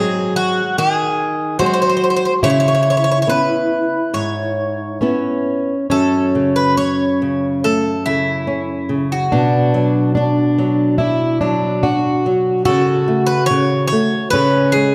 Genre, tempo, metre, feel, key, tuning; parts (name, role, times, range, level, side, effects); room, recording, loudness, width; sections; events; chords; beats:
fado-style ballad; 71 BPM; 4/4; rubato; C# minor, F# minor from 5.9 s; A4 = 440 Hz
Greek bouzouki; melody; 0.0-14.9 s; E4 to C#5; -22 LUFS; equal
fingerpicked plugged-in twelve-string acoustic guitar; second line; 0.0-14.9 s; C#4 to G#4; -20 LUFS; equal
flamenco guitar; accompaniment; 0.0-14.9 s; F#2 to E4; -21 LUFS; equal
wet scoring stage reverb, RT60 1.9 s; dark, warm production; -16 LUFS; mono
0.0-5.9 A section; 5.9-14.9 B section
0.0 G#7; 2.4 C#m7; 5.9 F#m; 9.3 Bm; 12.7 F#m/C#; 14.3 C#5
0.77 1.60 | 2.43 3.27 4.13 5.01 | 5.90 6.77 7.63 8.48 | 9.32 10.17 11.00 11.83 | 12.66 13.49 14.32